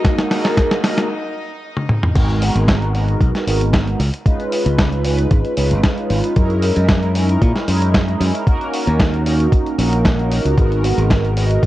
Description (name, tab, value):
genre	nu-disco, nu disco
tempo	114 BPM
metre	4/4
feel	straight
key	G# minor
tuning	A4 = 440 Hz
part	mellow synth brass	accompaniment	0.0-11.7 s	G#3 to B4	-20 LUFS	right 1 dB	chorus, phaser, sidechain pumping, cassette tape, tape echo
part	bright chamber string section	sustained chords	0.0-2.2 s	D#4 to D#5	-28 LUFS	right 1 dB	sidechain pumping, cassette tape
part	dusty soul sampler-style drum kit	drums	0.0-11.7 s	crash cymbal, hi-hat, snare drum, toms	-20 LUFS	equal	none
part	electronic kick drum	drums	0.0-11.7 s	none	-15 LUFS	equal	none
part	modern bright fingered electric bass	bass	0.4-11.7 s	G#1 to A#2	-17 LUFS	equal	high-pass filter
room	light reverb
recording	home recording on cassette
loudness	-14 LUFS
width	side -15 dB against mid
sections	0.0-2.2 A section; 2.2-11.7 B section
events	build-up 0.0-2.2; drum fill 0.0-1.1, 1.8-2.2; break 1.1-2.2; drop 2.2-11.7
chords	0.1 D#m; 2.2 G#m9; 4.0 C#9; 6.4 F#13; 8.5 D#m7; 10.6 G#m9